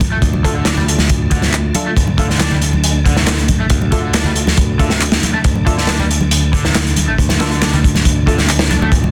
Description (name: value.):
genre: breakbeat, breaks.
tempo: 138 BPM.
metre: 4/4.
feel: straight.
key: D minor.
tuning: A4 = 440 Hz.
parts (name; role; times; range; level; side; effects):
tonewheel organ; sustained chords; 0.0-9.1 s; D3 to F4; -26 LUFS; equal; none.
modern bright picked electric bass; bass; 0.0-9.1 s; A1 to D2; -20 LUFS; equal; none.
crunchy breakbeat drum kit; drums; 0.0-9.0 s; hi-hat, kick drum, snare drum; -17 LUFS; equal; none.
congas; percussion; 0.0-9.1 s; none; -25 LUFS; equal; none.
raw garage guitar; riff; 0.1-8.9 s; C3 to D4; -26 LUFS; equal; overdrive, tube saturation, vintage 12-bit sampler grit, delay.
filtered dub chord stab; stabs; 0.4-8.4 s; A3 to A4; -27 LUFS; equal; chorus, delay.
electronic handclaps; drums; 0.7-8.6 s; none; -24 LUFS; equal; overdrive.
room: light reverb.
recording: dense, heavily limited modern master.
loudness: -14 LUFS.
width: mono.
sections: 0.0-9.1 A section.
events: none.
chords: 0.0 Dm.